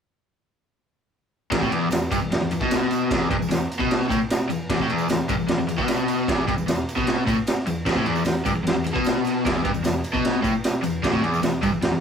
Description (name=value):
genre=garage rock duo or trio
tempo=151 BPM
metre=4/4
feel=straight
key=E minor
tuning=A4 = 445 Hz
part: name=overdriven electric guitar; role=riff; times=1.5-12.0 s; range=E2 to B2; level=-22 LUFS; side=left 1 dB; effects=none
part: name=raw garage drum kit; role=drums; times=1.5-11.9 s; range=crash cymbal, kick drum, ride cymbal, snare drum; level=-24 LUFS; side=right 1 dB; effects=none
part: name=tambourine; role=percussion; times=1.5-12.0 s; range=none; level=-45 LUFS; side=right 6 dB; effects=none
room=wet small room reverb, RT60 0.5 s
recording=rough rehearsal-room recording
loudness=-20 LUFS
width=side -7 dB against mid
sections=1.5-12.0 A section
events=none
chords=none